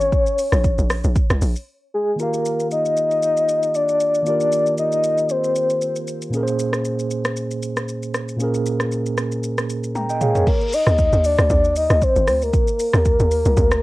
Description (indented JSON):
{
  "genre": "amapiano",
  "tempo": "116 BPM",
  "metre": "4/4",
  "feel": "swing 55% on 16ths",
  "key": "Eb major",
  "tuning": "A4 = 440 Hz",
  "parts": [
    { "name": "soft octave-layered synth lead", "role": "melody", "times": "0.0-6.1, 10.2-13.8 s", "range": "Ab4 to Eb5", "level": "-19 LUFS", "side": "left 1 dB", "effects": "chorus, tremolo, tape echo" },
    { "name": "hollow log drum bass", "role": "bass", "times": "0.0-1.6, 10.9-13.8 s", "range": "G1 to Eb2", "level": "-18 LUFS", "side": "equal", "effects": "none" },
    { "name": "deep house drum kit", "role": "drums", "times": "0.0-13.8 s", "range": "crash cymbal, hi-hat, kick drum, rim click, shaker, toms", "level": "-22 LUFS", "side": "equal", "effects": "cassette tape" },
    { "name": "mellow tine electric piano", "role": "accompaniment", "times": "2.2-10.6 s", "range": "Bb2 to Bb5", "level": "-23 LUFS", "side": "right 2 dB", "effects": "auto-pan, cassette tape" }
  ],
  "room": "light reverb",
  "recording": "home recording on cassette",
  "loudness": "-17 LUFS",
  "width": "side -18 dB against mid",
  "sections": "0.0-2.2 A section; 2.2-10.5 B section; 10.5-13.8 A section",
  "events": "drop 0.0-2.2, 10.5-13.8; break 1.7-2.2; drum fill 10.0-10.5",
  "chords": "0.0 Bbm7; 2.2 Ebmaj9; 6.3 Bbm7; 10.5 Ebmaj7(no3)"
}